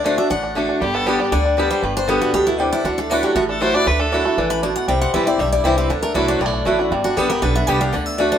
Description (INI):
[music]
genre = bluegrass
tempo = 236 BPM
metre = 4/4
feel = straight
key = unclear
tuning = A4 = 440 Hz
[part]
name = bluegrass banjo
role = melody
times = 0.0-8.4 s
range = G3 to G4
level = -24 LUFS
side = right 3 dB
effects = none
[part]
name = picked steel-string acoustic guitar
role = melody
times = 0.0-8.4 s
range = D4 to B5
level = -22 LUFS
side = left 2 dB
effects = none
[part]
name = picked swing-style acoustic guitar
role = accompaniment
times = 0.0-8.4 s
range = G2 to G4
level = -20 LUFS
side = equal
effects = none
[part]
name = upright bass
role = bass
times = 0.0-8.3 s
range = G1 to D2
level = -24 LUFS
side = right 1 dB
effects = none
[part]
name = clear fiddle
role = second line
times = 0.8-1.3, 3.5-4.4 s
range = G4 to D5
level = -22 LUFS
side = left 1 dB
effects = none
[sound]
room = moderate stone room reverb, RT60 1.0 s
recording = band playing live in one room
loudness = -16 LUFS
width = side -9 dB against mid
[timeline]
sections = 0.8-8.4 A section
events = none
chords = 0.0 D; 0.8 G; 2.8 Dadd9; 4.9 C; 5.9 Dadd9; 6.9 G